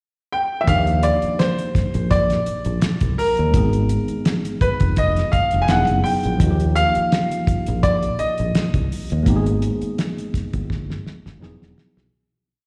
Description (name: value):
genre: lush 1970s-style soul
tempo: 84 BPM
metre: 4/4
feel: swing 54% on 16ths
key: Eb major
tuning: A4 = 440 Hz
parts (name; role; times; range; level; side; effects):
- clear grand piano; melody; 0.3-11.4 s; Bb4 to Ab5; -24 LUFS; equal; slapback echo
- tine electric piano; accompaniment; 0.6-12.2 s; F3 to Ab4; -28 LUFS; equal; overdrive
- fingered electric bass; bass; 0.7-12.1 s; E1 to Eb2; -23 LUFS; equal; none
- cloth-damped thuddy drum kit; drums; 0.7-12.1 s; hi-hat, kick drum, snare drum; -23 LUFS; equal; slapback echo
room: light reverb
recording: live gig heard through the venue's PA, recital hall reverb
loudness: -20 LUFS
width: mono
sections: 0.0-0.7 pickup bar; 0.7-12.1 A section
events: fade-out 9.3-12.1; drum fill 10.7-12.1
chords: 0.0 N.C.; 0.7 Ebmaj9; 3.5 Abmadd9; 5.7 Emaj9; 6.4 Ebadd9; 9.3 Abmadd9; 11.4 Emaj9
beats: | 0.68 1.39 2.11 2.82 | 3.54 4.25 4.97 5.69 | 6.40 7.12 7.84 8.55 | 9.27 9.98 10.70 11.41